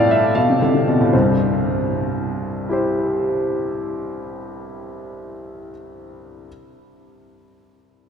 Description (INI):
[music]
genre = classical-period piano sonatina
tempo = 77 BPM (dotted quarters)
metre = 6/8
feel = straight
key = C major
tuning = A4 = 440 Hz
[part]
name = clear grand piano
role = solo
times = 0.0-6.5 s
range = C2 to F5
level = -18 LUFS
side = left 1 dB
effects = none
[sound]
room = wet cathedral reverb, RT60 5.2 s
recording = in a vast, echoing space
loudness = -17 LUFS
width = side -7 dB against mid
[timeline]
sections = 0.0-1.1 A section; 1.1-4.2 B section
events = slowing down 0.0-1.1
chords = 0.4 Bm7b5; 1.1 C